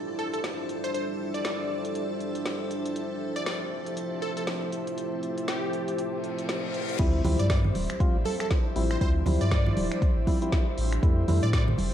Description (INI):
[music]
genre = deep house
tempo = 119 BPM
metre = 4/4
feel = swing 59% on 16ths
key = D minor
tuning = A4 = 441 Hz
[part]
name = deep dark ambient pad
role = sustained chords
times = 0.0-11.9 s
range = F3 to D5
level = -35 LUFS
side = equal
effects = chorus, built-in reverb, sidechain pumping
[part]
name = airy breathy pad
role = texture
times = 0.0-11.9 s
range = F3 to E5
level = -35 LUFS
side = equal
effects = chorus, sidechain pumping
[part]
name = string machine, violins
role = texture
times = 0.0-7.0 s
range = A4 to A5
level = -40 LUFS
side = right 1 dB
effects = ensemble chorus
[part]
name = plucky unison lead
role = melody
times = 0.2-11.6 s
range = G4 to D5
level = -35 LUFS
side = left 1 dB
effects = phaser, diffuse ambient delay
[part]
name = deep house drum kit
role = drums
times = 0.2-11.9 s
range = crash cymbal, finger snaps, hi-hat, snare drum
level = -36 LUFS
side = equal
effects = vintage 12-bit sampler grit, small room ambience
[part]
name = reverse cymbal and impact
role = sound effects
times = 6.2-9.0 s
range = none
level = -38 LUFS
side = left 2 dB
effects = none
[part]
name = percussive organ stab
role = stabs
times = 7.0-11.5 s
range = F3 to F4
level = -32 LUFS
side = left 1 dB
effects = chorus, cassette tape, sidechain pumping, diffuse ambient delay
[part]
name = warm sub bass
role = bass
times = 7.0-11.9 s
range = D1 to A2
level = -26 LUFS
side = equal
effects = sidechain pumping
[part]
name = electronic kick drum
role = drums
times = 7.0-11.7 s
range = none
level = -25 LUFS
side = equal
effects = vintage 12-bit sampler grit, small room ambience
[part]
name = congas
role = percussion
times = 7.2-11.9 s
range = none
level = -32 LUFS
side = right 3 dB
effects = none
[sound]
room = moderate plate reverb, RT60 1.5 s, digital ambience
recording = dreamy mix soaked in reverb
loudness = -25 LUFS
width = side -10 dB against mid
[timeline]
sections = 0.0-7.0 A section; 7.0-11.9 B section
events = reverse cymbal 6.2-7.0; drop 7.0-11.9; impact 7.0-9.0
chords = 0.0 Dm11; 3.0 Fmaj7; 7.0 Dm11; 11.0 Fmaj7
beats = 0.44 | 0.94 1.45 1.95 2.46 | 2.96 3.46 3.97 4.47 | 4.98 5.48 5.99 6.49 | 6.99 7.50 8.00 8.51 | 9.01 9.52 10.02 10.52 | 11.03 11.53